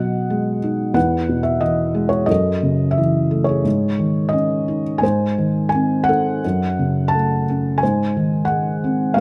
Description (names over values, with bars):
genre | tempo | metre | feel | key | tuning
classical, lyrical solo piano | 88 BPM | 4/4 | rubato | unclear | A4 = 441 Hz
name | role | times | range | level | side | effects
felt-muted upright piano | solo | 0.0-9.2 s | E2 to A5 | -19 LUFS | equal | none
room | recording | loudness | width
little or no reverb | close, detailed microphones | -19 LUFS | mono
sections
0.0-9.2 A section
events
none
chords
0.0 B6; 1.0 E; 2.3 F#m7; 3.7 G#sus4; 5.0 G#; 6.4 F#m; 7.8 G#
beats
0.31 | 0.97 1.63 2.29 2.97 | 3.65 4.34 5.03 5.74 | 6.44 7.13 7.82 8.49 | 9.16